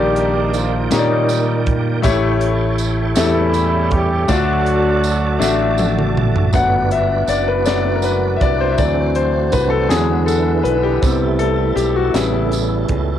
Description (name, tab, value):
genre	slow gospel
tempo	53 BPM (dotted quarters)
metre	6/8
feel	straight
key	G major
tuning	A4 = 441 Hz
part	warm horn section	melody	0.0-6.2 s	Eb3 to G4	-21 LUFS	right 1 dB	cassette tape
part	bright concert grand piano	accompaniment	0.0-13.2 s	A2 to F#5	-18 LUFS	left 6 dB	cassette tape
part	tonewheel organ	sustained chords	0.0-13.2 s	Eb3 to A5	-24 LUFS	right 9 dB	chorus vibrato, fast rotary speaker, cassette tape
part	modern bright fingered electric bass	bass	0.0-13.2 s	F#1 to Bb2	-20 LUFS	right 2 dB	none
part	crisp fusion drum kit	drums	0.2-13.1 s	hi-hat, kick drum, snare drum, toms	-22 LUFS	right 2 dB	cassette tape
part	tambourine	percussion	0.5-12.9 s	none	-30 LUFS	right 12 dB	none
part	mellow French horn section	sustained chords	6.5-13.2 s	E3 to F#4	-27 LUFS	right 10 dB	cassette tape
room	light reverb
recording	home recording on cassette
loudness	-14 LUFS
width	side -10 dB against mid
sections	0.0-6.5 A section; 6.5-13.2 B section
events	drum fill 5.4-6.5; grand piano solo 6.5-13.2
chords	0.0 Ebmaj7/Bb; 2.0 A7; 4.3 D; 6.5 Gmaj7; 8.8 D7; 9.9 E7; 11.0 Am7/C; 12.2 A7